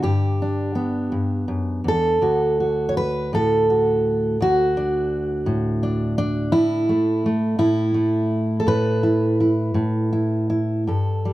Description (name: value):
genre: folk, solo fingerstyle acoustic guitar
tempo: 55 BPM (dotted quarters)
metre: 6/8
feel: rubato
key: unclear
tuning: A4 = 440 Hz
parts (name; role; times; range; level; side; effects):
- fingerpicked steel-string acoustic guitar; solo; 0.0-11.3 s; D2 to C#5; -18 LUFS; equal; none
room: light reverb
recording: none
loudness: -18 LUFS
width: side -16 dB against mid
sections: 0.0-10.9 A section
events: none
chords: 0.0 G; 2.2 D; 6.5 Asus2